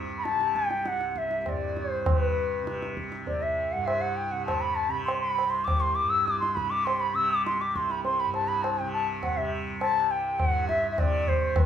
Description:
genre	indian classical, Hindustani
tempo	101 BPM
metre	4/4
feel	straight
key	C raga yaman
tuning	A4 = 441 Hz
part	tanpura	drone	0.0-11.7 s	C2 to C3	-34 LUFS	right 2 dB	none
part	mellow bansuri	melody	0.2-11.7 s	B4 to E6	-26 LUFS	left 1 dB	none
part	tabla	percussion	0.3-11.7 s	none	-30 LUFS	equal	none
room	moderate large studio reverb, RT60 0.8 s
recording	band playing live in one room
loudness	-25 LUFS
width	side -9 dB against mid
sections	0.0-11.6 A section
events	speeding up 0.0-11.7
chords	none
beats	0.25 0.86 1.47 | 2.07 2.68 3.28 3.88 | 4.48 5.08 5.68 6.27 | 6.87 7.46 8.05 8.64 | 9.23 9.81 10.40 10.98 | 11.56

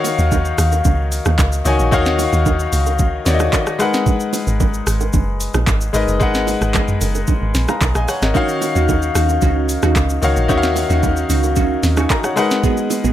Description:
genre	amapiano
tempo	112 BPM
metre	4/4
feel	straight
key	Eb minor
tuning	A4 = 440 Hz
part	clear grand piano	accompaniment	0.0-13.1 s	Eb3 to Db6	-19 LUFS	left 4 dB	none
part	smooth R&B drum kit	drums	0.0-13.1 s	handclaps, hi-hat, kick drum, rim click, shaker, snare drum, toms	-20 LUFS	equal	none
part	bongos and congas	percussion	0.0-13.0 s	none	-26 LUFS	right 10 dB	none
part	deep log drum bass	bass	0.2-13.1 s	Gb1 to Eb2	-18 LUFS	equal	none
part	glassy wavetable pluck	stabs	8.3-13.1 s	Cb4 to Ab4	-21 LUFS	right 5 dB	chorus, digital delay
room	little or no reverb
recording	none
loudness	-14 LUFS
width	side -12 dB against mid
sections	0.0-13.1 A section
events	break 0.0-0.3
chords	0.0 Ebm7; 3.8 Abm7; 8.4 Ebm7; 12.4 Abm7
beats	0.32 0.85 1.39 | 1.92 2.46 3.00 3.53 | 4.07 4.60 5.14 5.67 | 6.21 6.75 7.28 7.82 | 8.35 8.89 9.42 9.96 | 10.49 11.03 11.57 12.10 | 12.64

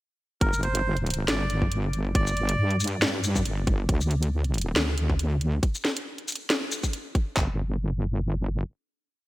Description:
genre	deep dubstep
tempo	138 BPM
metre	4/4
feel	swing 55% on 16ths, half-time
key	G minor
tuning	A4 = 440 Hz
part	melodica	melody	0.4-2.8 s	Bb4 to D5	-31 LUFS	right 1 dB	dub echo
part	wobble bass	bass	0.4-8.6 s	G1 to G2	-26 LUFS	equal	chorus, tube saturation
part	garage drum kit	drums	0.4-7.5 s	handclaps, kick drum	-24 LUFS	equal	overdrive
part	garage drum kit	drums	0.4-7.2 s	hi-hat, shaker, snare drum	-28 LUFS	equal	overdrive
room	light reverb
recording	bright 1980s-style digital production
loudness	-24 LUFS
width	side -17 dB against mid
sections	0.4-7.4 drop; 7.4-9.3 final note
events	drop 0.4-7.4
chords	0.4 G5; 3.9 N.C.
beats	| 0.41 0.85 1.28 1.72 | 2.15 2.59 3.02 3.46 | 3.89 4.33 4.76 5.19 | 5.63 6.06 6.50 6.93 | 7.37 7.80 8.24

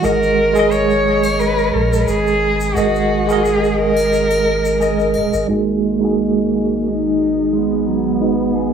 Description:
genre	trip hop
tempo	88 BPM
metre	4/4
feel	swing 55% on 16ths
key	G# minor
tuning	A4 = 440 Hz
part	dark cello	melody	0.0-8.7 s	A#3 to C#5	-18 LUFS	equal	tape echo
part	tine electric piano	accompaniment	0.0-8.7 s	G#3 to D#5	-18 LUFS	right 1 dB	overdrive, fast stereo tremolo, low-pass filter, tape echo
part	warm sub bass	bass	0.0-8.7 s	D#1 to A#1	-24 LUFS	equal	none
part	egg shaker and triangle	percussion	0.0-5.5 s	none	-32 LUFS	equal	none
part	warbly tape-like pad	sustained chords	6.9-8.7 s	G#3	-25 LUFS	right 7 dB	chorus, built-in reverb
part	electric guitar at the edge of break-up	arpeggios	5.5-8.7 s	F#3 to G#4	-23 LUFS	right 7 dB	low-pass filter, tape echo
room	moderate spring reverb, RT60 2.2 s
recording	echo-heavy mix, low-pass filter, studio reverb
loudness	-14 LUFS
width	side -7 dB against mid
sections	0.0-5.5 A section; 5.5-8.7 B section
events	filter sweep on tine electric piano 5.5-8.7; filter sweep on clean electric guitar 5.5-8.7; filter sweep 5.5-8.7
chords	0.0 G#sus2; 5.5 G#m7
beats	| 0.03 0.71 1.39 2.08 | 2.76 3.44 4.12 4.80 | 5.49 6.17 6.85 7.53 | 8.21

